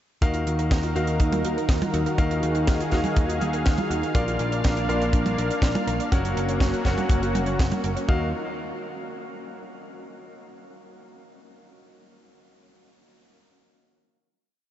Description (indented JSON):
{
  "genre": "italo disco",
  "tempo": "122 BPM",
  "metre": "4/4",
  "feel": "straight",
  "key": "Eb minor",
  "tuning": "A4 = 440 Hz",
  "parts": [
    { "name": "lush unison pad", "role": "sustained chords", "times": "0.2-8.3 s", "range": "Eb3 to F5", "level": "-29 LUFS", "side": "equal", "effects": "chorus" },
    { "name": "wide unison pluck", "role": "arpeggios", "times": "0.2-8.3 s", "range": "Db4 to D5", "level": "-35 LUFS", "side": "right 2 dB", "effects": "none" },
    { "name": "clear concert grand piano", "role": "stabs", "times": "0.2-8.3 s", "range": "Eb3 to Gb5", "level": "-31 LUFS", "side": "left 2 dB", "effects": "vintage 12-bit sampler grit, diffuse ambient delay" },
    { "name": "picked electric bass", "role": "bass", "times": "0.2-8.3 s", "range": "Gb1 to Eb2", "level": "-28 LUFS", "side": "equal", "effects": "none" },
    { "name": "kick drum", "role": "drums", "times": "0.2-8.2 s", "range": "none", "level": "-22 LUFS", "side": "equal", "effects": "small room ambience" },
    { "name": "tight funk drum kit", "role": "drums", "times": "0.2-8.1 s", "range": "hi-hat, snare drum, toms", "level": "-32 LUFS", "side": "right 2 dB", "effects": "small room ambience" }
  ],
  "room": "moderate huge ambient reverb, RT60 9.0 s",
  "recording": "dreamy mix soaked in reverb, nothing above 7.9 kHz",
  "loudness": "-21 LUFS",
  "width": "side -12 dB against mid",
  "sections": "0.2-8.1 verse; 8.1-10.1 final chord",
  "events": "none",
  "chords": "0.2 Ebmadd9; 4.2 Bb; 6.1 Gb; 8.1 Ebmadd9"
}